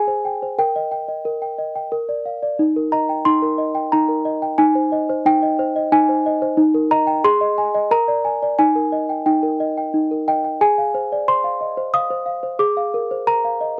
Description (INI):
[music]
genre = classical, lullaby for celesta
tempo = 90 BPM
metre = 3/4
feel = straight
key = Eb major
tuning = A4 = 439 Hz
[part]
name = small celesta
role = solo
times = 0.0-13.8 s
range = Eb4 to Eb6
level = -19 LUFS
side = equal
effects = none
[sound]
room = little or no reverb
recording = dry, close 1970s-style studio recording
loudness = -19 LUFS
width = mono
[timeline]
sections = 0.0-10.6 A section; 10.6-13.8 B section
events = none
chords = 0.0 Abmaj7; 0.6 Eb/Bb; 1.9 Bb; 2.6 Eb; 4.6 Ab/Eb; 6.6 Eb; 7.2 Ab; 7.9 Bb7; 8.6 Eb; 10.6 Fm/Ab; 12.6 Bb7/Ab